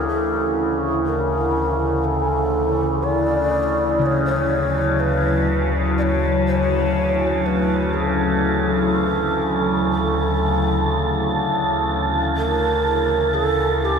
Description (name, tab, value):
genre	dark ambient drone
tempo	61 BPM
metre	4/4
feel	straight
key	unclear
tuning	A4 = 440 Hz
part	breathy mellow long shakuhachi	melody	0.0-14.0 s	G4 to D5	-23 LUFS	right 1 dB	ping-pong delay
part	dark analog pad	sustained chords	0.0-14.0 s	F#3 to E4	-24 LUFS	left 1 dB	chorus
part	overtone-sweeping drone	drone	0.0-14.0 s	D2 to C#3	-21 LUFS	left 1 dB	chorus, built-in reverb, phaser
part	gamelan-type bossed gongs	arpeggios	4.0-9.9 s	C#3	-29 LUFS	left 2 dB	ping-pong delay
part	wind-like tuned noise texture	texture	4.4-14.0 s	A5	-27 LUFS	right 2 dB	built-in reverb
room	wet huge ambient reverb, RT60 7.9 s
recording	none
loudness	-17 LUFS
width	side -6 dB against mid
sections	0.0-14.0 A section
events	none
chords	0.0 A; 4.0 F#m; 11.9 A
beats	| 0.06 1.05 2.03 3.01 | 4.00 4.98 5.96 6.95 | 7.93 8.91 9.90 10.88 | 11.87 12.85 13.83